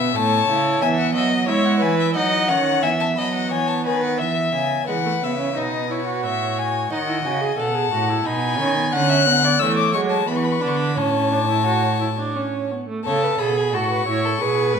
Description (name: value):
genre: classical, baroque-style fugue for string quartet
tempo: 89 BPM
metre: 3/4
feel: straight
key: A major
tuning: A4 = 438 Hz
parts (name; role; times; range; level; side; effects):
- warm violin; melody; 0.0-14.8 s; C#5 to F#6; -23 LUFS; left 8 dB; none
- warm violin; second line; 0.0-14.8 s; G#4 to G#5; -24 LUFS; left 2 dB; none
- warm viola; accompaniment; 0.0-14.8 s; G#3 to B4; -23 LUFS; right 4 dB; none
- warm cello; bass; 0.0-14.8 s; G#2 to G#3; -24 LUFS; right 4 dB; none
room: wet recital hall reverb, RT60 1.3 s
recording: minimal, uncompressed stereo recording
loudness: -18 LUFS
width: side -6 dB against mid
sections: 0.0-4.9 A section; 4.9-13.1 B section; 13.1-14.8 A section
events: none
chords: 0.0 A; 0.8 E; 2.2 D#m7; 2.8 E; 4.9 E5; 6.2 A; 6.9 D#dim; 8.3 G#m/B; 8.9 Bm/D; 9.6 A/E; 10.3 E5; 11.0 A